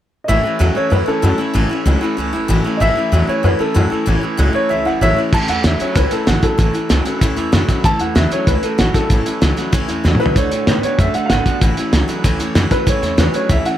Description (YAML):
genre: rockabilly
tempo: 191 BPM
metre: 4/4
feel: straight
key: A major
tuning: A4 = 438 Hz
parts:
  - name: dark upright piano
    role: melody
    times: 0.2-13.8 s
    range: C#4 to A5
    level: -20 LUFS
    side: equal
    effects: slapback echo
  - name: picked steel-string acoustic guitar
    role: accompaniment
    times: 0.3-13.8 s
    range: A2 to F#4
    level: -23 LUFS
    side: left 4 dB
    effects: none
  - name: electric guitar through a small old amp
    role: riff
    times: 0.3-13.8 s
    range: A2 to B3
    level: -22 LUFS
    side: right 3 dB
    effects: none
  - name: upright bass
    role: bass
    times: 0.3-13.7 s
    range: F#1 to A2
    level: -18 LUFS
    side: equal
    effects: none
  - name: cloth-damped thuddy drum kit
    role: drums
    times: 5.3-13.7 s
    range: crash cymbal, hi-hat, kick drum, snare drum, toms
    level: -16 LUFS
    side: equal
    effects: none
room: light reverb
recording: none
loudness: -13 LUFS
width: side -11 dB against mid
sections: 0.3-5.3 A section; 5.3-13.8 B section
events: drum fill 10.0-10.4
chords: 0.3 A; 10.4 D; 11.6 A